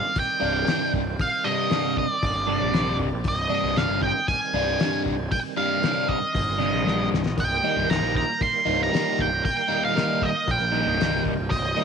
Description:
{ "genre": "psychedelic rock", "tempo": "116 BPM", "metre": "4/4", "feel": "straight", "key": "C minor", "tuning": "A4 = 440 Hz", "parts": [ { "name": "octave-fuzz lead guitar", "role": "melody", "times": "0.0-11.8 s", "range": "D5 to C6", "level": "-25 LUFS", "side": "right 1 dB", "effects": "wah, distortion, tape echo" }, { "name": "bright tonewheel organ", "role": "sustained chords", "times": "0.0-11.8 s", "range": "Eb3 to C5", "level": "-34 LUFS", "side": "right 16 dB", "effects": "chorus vibrato, fast rotary speaker" }, { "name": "cloth-damped thuddy drum kit", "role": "drums", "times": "0.2-11.6 s", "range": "hi-hat, kick drum, snare drum", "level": "-28 LUFS", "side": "left 4 dB", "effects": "none" }, { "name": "crunchy overdriven guitar", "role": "riff", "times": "0.4-11.8 s", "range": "G2 to Eb4", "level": "-25 LUFS", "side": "equal", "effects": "phaser" }, { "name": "fuzz picked electric bass", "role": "bass", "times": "0.4-11.7 s", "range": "C1 to Bb1", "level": "-30 LUFS", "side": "equal", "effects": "overdrive, tube saturation" } ], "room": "small room ambience", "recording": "1960s-style stereo", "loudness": "-21 LUFS", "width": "side -6 dB against mid", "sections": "0.0-11.8 A section", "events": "drum fill 6.9-7.4", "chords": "0.0 Cmadd9" }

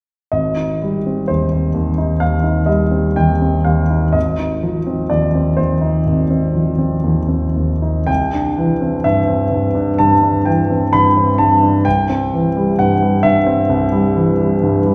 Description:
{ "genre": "classical, impressionist solo piano", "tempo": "63 BPM", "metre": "4/4", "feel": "rubato", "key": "Ab lydian", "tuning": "A4 = 445 Hz", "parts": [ { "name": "warm concert grand piano", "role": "solo", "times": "0.3-14.9 s", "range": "Ab1 to Cb6", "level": "-16 LUFS", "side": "equal", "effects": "none" } ], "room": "wet recital hall reverb, RT60 1.6 s", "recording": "heard from further back in the room", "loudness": "-16 LUFS", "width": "mono", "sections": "0.3-14.9 A section", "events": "none", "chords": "0.3 Abmaj7; 4.2 Fm7/Ab; 8.1 Cadd9; 11.9 C" }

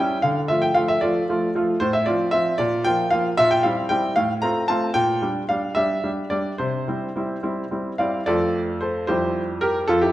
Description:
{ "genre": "classical-period piano sonatina", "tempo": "70-78 BPM (dotted quarters)", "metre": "6/8", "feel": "rubato", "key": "F major", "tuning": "A4 = 440 Hz", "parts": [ { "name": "bright baby grand piano", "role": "solo", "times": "0.0-10.1 s", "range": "F2 to Bb5", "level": "-19 LUFS", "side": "equal", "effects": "none" } ], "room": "wet recital hall reverb, RT60 1.8 s", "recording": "none", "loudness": "-19 LUFS", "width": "side -14 dB against mid", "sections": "0.0-8.3 A section; 8.3-10.1 B section", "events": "none", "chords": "0.2 Dm; 1.8 F/A; 2.6 Bb5; 3.4 C7/Bb; 4.2 F/A; 5.0 Gm/Bb; 6.6 C; 8.3 F; 9.1 C/F" }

